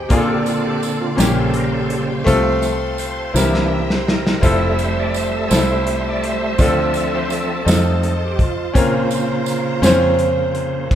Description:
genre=slow gospel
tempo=56 BPM (dotted quarters)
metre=6/8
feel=straight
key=F major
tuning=A4 = 440 Hz
part: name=bright grand piano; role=accompaniment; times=0.0-10.9 s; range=Bb2 to C5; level=-19 LUFS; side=left 1 dB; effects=none
part: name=bright studio string section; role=sustained chords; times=0.0-10.9 s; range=Db4 to C6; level=-31 LUFS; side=equal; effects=none
part: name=bright tonewheel organ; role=sustained chords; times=0.0-10.9 s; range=Db3 to E5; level=-22 LUFS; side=right 1 dB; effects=fast rotary speaker, chorus vibrato
part: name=fingered electric bass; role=bass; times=0.0-10.9 s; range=F1 to F2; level=-22 LUFS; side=equal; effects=none
part: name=warm soul drum kit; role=drums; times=0.1-10.9 s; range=crash cymbal, hi-hat, kick drum, snare drum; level=-19 LUFS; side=equal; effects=none
part: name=tambourine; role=percussion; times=0.1-10.2 s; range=none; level=-31 LUFS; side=right 7 dB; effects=none
room=moderate large studio reverb, RT60 1.5 s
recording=band playing live in one room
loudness=-15 LUFS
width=side -10 dB against mid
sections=0.0-10.9 A section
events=tonewheel organ solo 0.0-10.9; drum fill 3.3-4.4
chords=0.1 Bbmaj7; 1.2 Bbm6; 2.3 F/C; 3.3 C7; 4.4 Fmaj7; 6.6 Dm7; 7.7 F7; 8.7 Bbmadd9

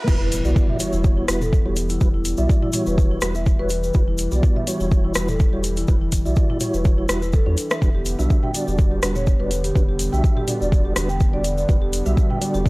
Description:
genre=afro house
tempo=124 BPM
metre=4/4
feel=swing 55% on 16ths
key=E dorian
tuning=A4 = 440 Hz
part: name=warm analog pad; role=sustained chords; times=0.0-12.7 s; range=D3 to B3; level=-30 LUFS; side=left 1 dB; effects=chorus, sidechain pumping
part: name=marimba with soft mallets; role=arpeggios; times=0.0-12.6 s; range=B3 to G5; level=-27 LUFS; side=equal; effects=sidechain pumping, analog delay
part: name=mellow tonewheel organ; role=stabs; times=0.0-12.7 s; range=G3 to E5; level=-27 LUFS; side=right 1 dB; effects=chorus vibrato, stopped rotary speaker, sidechain pumping, analog delay
part: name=warm sub bass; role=bass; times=0.0-12.7 s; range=E1 to E2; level=-24 LUFS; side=equal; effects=sidechain pumping, high-pass filter
part: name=afro-pop drum kit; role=drums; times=0.0-12.5 s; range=crash cymbal, hi-hat, rim click, toms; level=-26 LUFS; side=equal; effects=none
part: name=riser and impact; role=sound effects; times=0.0-2.0 s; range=none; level=-30 LUFS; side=equal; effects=none
part: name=electronic kick drum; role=drums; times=0.1-12.7 s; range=none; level=-18 LUFS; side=equal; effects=high-pass filter on kick
part: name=egg shaker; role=percussion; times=0.1-12.7 s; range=none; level=-35 LUFS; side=left 2 dB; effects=none
room=little or no reverb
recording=dry, gritty hardware recording, cassette tape, high-pass filter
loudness=-17 LUFS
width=side -23 dB against mid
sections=0.1-12.7 A section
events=drop 0.1-12.7; impact 0.1-2.0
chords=0.1 Emadd9; 7.8 Gmaj7/E

